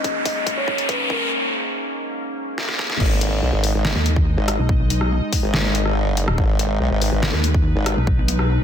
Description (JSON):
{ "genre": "heavy wobble dubstep", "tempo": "142 BPM", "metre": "4/4", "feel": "half-time", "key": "G# minor", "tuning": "A4 = 439 Hz", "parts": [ { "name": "felt-muted upright piano", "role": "melody", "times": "0.0-1.3 s", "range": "A#4 to D#5", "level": "-27 LUFS", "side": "left 1 dB", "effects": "dub echo" }, { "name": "evolving wavetable pad", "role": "sustained chords", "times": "0.0-8.6 s", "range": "G#2 to D#5", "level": "-27 LUFS", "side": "left 1 dB", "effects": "chorus, built-in reverb, sidechain pumping" }, { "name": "dubstep drum kit", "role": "drums", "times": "0.0-8.5 s", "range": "crash cymbal, hi-hat, rim click, snare drum", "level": "-24 LUFS", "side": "left 1 dB", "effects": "soft clipping on snare" }, { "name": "electronic kick drum", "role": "drums", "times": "0.0-8.2 s", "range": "none", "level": "-20 LUFS", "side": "equal", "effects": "none" }, { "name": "riser", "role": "sound effects", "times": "0.0-1.3 s", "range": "none", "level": "-23 LUFS", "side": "equal", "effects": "none" }, { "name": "formant-sweep wobble bass", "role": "bass", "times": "3.0-8.0 s", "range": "G#1 to B1", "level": "-20 LUFS", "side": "equal", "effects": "chorus, overdrive" }, { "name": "pulsing pluck wobble bass", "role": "bass", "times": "4.0-8.6 s", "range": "D#1 to D#2", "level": "-19 LUFS", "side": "equal", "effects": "chorus, overdrive" } ], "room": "digital ambience", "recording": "dense, heavily limited modern master, high-pass filter", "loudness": "-18 LUFS", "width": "side -9 dB against mid", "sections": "0.0-3.0 A section; 3.0-8.6 B section", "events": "build-up 0.0-3.0; drum fill 0.0-1.3, 2.6-3.0; riser 0.0-1.3; break 1.3-3.0; drop 3.0-8.6", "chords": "0.0 G#5" }